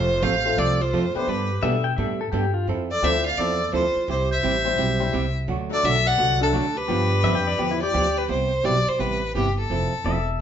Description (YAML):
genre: country, western swing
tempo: 171 BPM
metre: 4/4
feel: swing 65% on 8ths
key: C major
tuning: A4 = 441 Hz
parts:
  - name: clear fiddle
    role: melody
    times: 0.0-10.2 s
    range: G4 to F#5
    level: -23 LUFS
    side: left 1 dB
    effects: none
  - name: breathy clarinet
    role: second line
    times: 0.0-7.9 s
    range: D4 to D5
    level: -30 LUFS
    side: right 4 dB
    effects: none
  - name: archtop guitar, miked and amplified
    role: accompaniment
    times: 0.0-10.2 s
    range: C3 to A4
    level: -28 LUFS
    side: right 5 dB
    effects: none
  - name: upright bass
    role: bass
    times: 0.0-10.4 s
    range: E1 to B2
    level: -26 LUFS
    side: equal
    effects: none
  - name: tack piano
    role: accompaniment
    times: 0.5-7.4 s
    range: F#3 to C5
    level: -29 LUFS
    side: left 5 dB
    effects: none
  - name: pedal steel guitar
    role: second line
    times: 1.6-2.7, 7.2-10.4 s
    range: E4 to G5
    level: -27 LUFS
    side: left 6 dB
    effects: none
room: wet large studio reverb, RT60 0.9 s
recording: band playing live in one room, nothing above 7.6 kHz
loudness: -20 LUFS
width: side -9 dB against mid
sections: 0.0-8.3 A section; 8.3-10.4 B section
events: none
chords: 0.0 F; 1.3 Gadd9; 2.7 Fmaj7; 4.1 C; 5.5 D; 6.9 G7; 8.3 Cmaj7; 9.7 Fmaj7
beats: 0.22 0.57 0.92 | 1.27 1.62 1.98 2.33 | 2.68 3.03 3.38 3.73 | 4.08 4.43 4.78 5.13 | 5.48 5.83 6.19 6.54 | 6.89 7.24 7.59 7.94 | 8.29 8.64 9.00 9.35 | 9.70 10.05